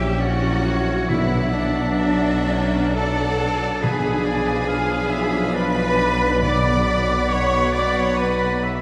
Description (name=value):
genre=classical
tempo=68 BPM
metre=3/4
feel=rubato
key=B minor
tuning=A4 = 440 Hz
part: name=rich symphonic violin section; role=melody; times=0.0-8.8 s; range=D5 to B5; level=-36 LUFS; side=equal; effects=none
part: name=clear oboe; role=second line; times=0.0-8.8 s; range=B4 to F5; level=-32 LUFS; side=equal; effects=none
part: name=flute section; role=second line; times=0.0-8.6 s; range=D5 to D6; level=-31 LUFS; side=equal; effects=none
part: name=rich studio violin section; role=second line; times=0.0-8.8 s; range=C#5 to F#5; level=-38 LUFS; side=equal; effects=none
part: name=rich symphonic viola section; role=accompaniment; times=0.0-8.8 s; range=B3 to D4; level=-33 LUFS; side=equal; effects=none
part: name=bright trombone section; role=sustained chords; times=0.0-8.8 s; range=A#2 to F#3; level=-32 LUFS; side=equal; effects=none
part: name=mellow French horn section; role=sustained chords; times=0.0-8.8 s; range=B3 to F#4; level=-33 LUFS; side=equal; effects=none
part: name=rich symphonic cello section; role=bass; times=0.0-8.6 s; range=D4 to D5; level=-26 LUFS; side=equal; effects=none
part: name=rich symphonic double bass section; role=bass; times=0.0-8.8 s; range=A#1 to B1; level=-30 LUFS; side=equal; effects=none
part: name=warm tuba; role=bass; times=0.0-8.8 s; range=A#1 to B1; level=-28 LUFS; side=equal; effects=none
part: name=bright clarinet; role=second line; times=0.2-8.6 s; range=D4 to D5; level=-31 LUFS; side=equal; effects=none
part: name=timpani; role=percussion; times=1.1-7.7 s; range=B2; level=-31 LUFS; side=equal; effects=none
room=wet church reverb, RT60 3.4 s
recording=recorded in a church or concert hall, vinyl crackle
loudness=-20 LUFS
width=mono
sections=0.0-8.8 A section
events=none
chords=0.0 F#7/A#; 1.1 Bm; 3.8 Bdim7; 6.4 Bm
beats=0.21 | 1.09 1.97 2.95 | 3.82 4.68 5.55 | 6.43 7.30 8.19